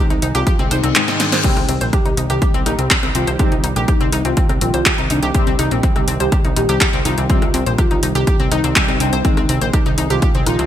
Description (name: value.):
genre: melodic techno.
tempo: 123 BPM.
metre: 4/4.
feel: straight.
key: C minor.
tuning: A4 = 440 Hz.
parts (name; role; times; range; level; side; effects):
soft octave-layered synth lead; melody; 0.0-10.7 s; D4 to G4; -24 LUFS; left 1 dB; chorus, phaser, sidechain pumping, digital delay.
sweeping resonant pad; sustained chords; 0.0-10.7 s; C3 to Ab4; -26 LUFS; right 2 dB; chorus, sidechain pumping.
analog pluck; arpeggios; 0.1-10.7 s; C4 to C5; -22 LUFS; left 2 dB; chorus, sidechain pumping, digital delay.
plucky analog bass; bass; 0.1-10.7 s; Bb1 to C2; -20 LUFS; equal; sidechain pumping.
punchy analog drum machine; drums; 0.1-10.7 s; crash cymbal, handclaps, hi-hat, rim click, snare drum; -20 LUFS; equal; overdrive, sidechain pumping on hats, sidechain pumping on cymbals, gated reverb.
electronic kick drum; drums; 0.5-10.3 s; none; -17 LUFS; equal; overdrive.
reverse cymbal; sound effects; 0.7-1.4 s; none; -25 LUFS; left 7 dB; none.
analog synth brass; stabs; 1.0-9.4 s; Ab2 to C4; -25 LUFS; left 2 dB; chorus, sidechain pumping, digital delay.
room: light reverb.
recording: bright 1980s-style digital production.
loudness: -14 LUFS.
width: side -11 dB against mid.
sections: 0.0-10.7 A section.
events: reverse cymbal 0.7-1.4; drum fill 1.1-1.4.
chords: 0.0 Ab; 1.4 Cm; 9.2 Ab.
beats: 0.47 0.95 | 1.44 1.93 2.42 2.91 | 3.39 3.88 4.37 4.86 | 5.34 5.83 6.32 6.81 | 7.30 7.78 8.27 8.76 | 9.25 9.73 10.22.